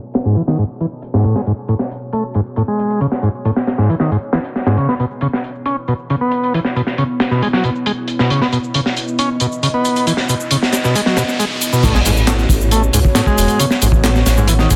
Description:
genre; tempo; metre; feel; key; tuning
breakbeat, breaks; 136 BPM; 4/4; straight; unclear; A4 = 441 Hz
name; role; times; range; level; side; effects
deep dark ambient pad; sustained chords; 0.0-14.8 s; B3 to A5; -27 LUFS; equal; chorus, built-in reverb, sidechain pumping
crunchy breakbeat drum kit; drums; 0.1-14.8 s; crash cymbal, hi-hat, kick drum, snare drum; -20 LUFS; equal; high-pass filter on kick, high-pass filter on hats, high-pass filter on cymbals, high-pass filter on snare, high-pass filter on room
house drum kit; drums; 0.1-14.8 s; handclaps, hi-hat, shaker; -26 LUFS; equal; none
combo organ; riff; 0.3-14.8 s; G#2 to C#4; -19 LUFS; equal; low-pass filter
riser and impact; sound effects; 9.6-13.6 s; none; -28 LUFS; equal; none
phased detuned saw bass; bass; 11.8-14.7 s; E1 to C#2; -17 LUFS; equal; phaser
room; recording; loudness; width
light reverb; dense, heavily limited modern master, low-pass filter; -16 LUFS; mono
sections
0.0-11.8 A section; 11.8-14.8 B section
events
filter sweep on transistor combo organ 0.0-11.8; filter sweep on ambient pad 0.0-11.8; filter sweep 0.0-11.8; riser 9.6-11.8; drop 11.8-14.8; impact 11.8-13.6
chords
0.0 A69; 4.8 C#m7; 11.8 A69

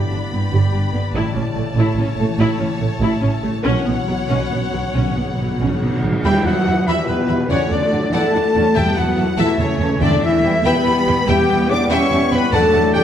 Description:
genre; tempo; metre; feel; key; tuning
cinematic, heroic adventure film score; 96 BPM (dotted quarters); 6/8; straight; E dorian; A4 = 441 Hz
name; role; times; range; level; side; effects
rich symphonic violin section; melody; 0.0-13.0 s; B4 to D6; -27 LUFS; left 2 dB; none
warm symphonic violin section; second line; 0.0-13.0 s; C#5 to B5; -27 LUFS; left 3 dB; none
dark symphonic viola section; accompaniment; 0.0-13.0 s; E3 to G4; -25 LUFS; right 1 dB; none
dark French horn section; sustained chords; 0.0-13.0 s; C#3 to D5; -22 LUFS; left 3 dB; none
concert harp; arpeggios; 0.0-13.0 s; G2 to B5; -26 LUFS; left 6 dB; none
warm symphonic cello section; bass; 0.1-13.0 s; G2 to D4; -23 LUFS; right 2 dB; none
warm symphonic double bass section; bass; 0.1-13.0 s; G1 to E2; -22 LUFS; right 3 dB; none
cymbal swell and tam-tam; percussion; 3.6-7.9 s; none; -31 LUFS; left 1 dB; none
timpani; percussion; 3.7-6.2, 8.8-13.0 s; E2 to B2; -25 LUFS; equal; none
bright oboe; second line; 6.2-13.0 s; B4 to D6; -26 LUFS; right 1 dB; none
mellow hollow silver concert flute; second line; 6.2-13.0 s; B4 to D6; -26 LUFS; left 2 dB; none
dark trombone section; sustained chords; 6.7-13.0 s; E3 to E4; -28 LUFS; right 1 dB; none
room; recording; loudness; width
wet recital hall reverb, RT60 1.3 s; none; -15 LUFS; side -9 dB against mid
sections
0.0-6.2 A section; 6.2-13.0 B section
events
build-up 0.0-6.2; timpani fill 3.7-6.2; band accent 6.2-6.7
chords
0.0 G; 1.1 A; 3.7 Bsus2; 6.2 Em; 7.5 D/E; 8.8 A/E; 10.0 Em; 12.5 D/E

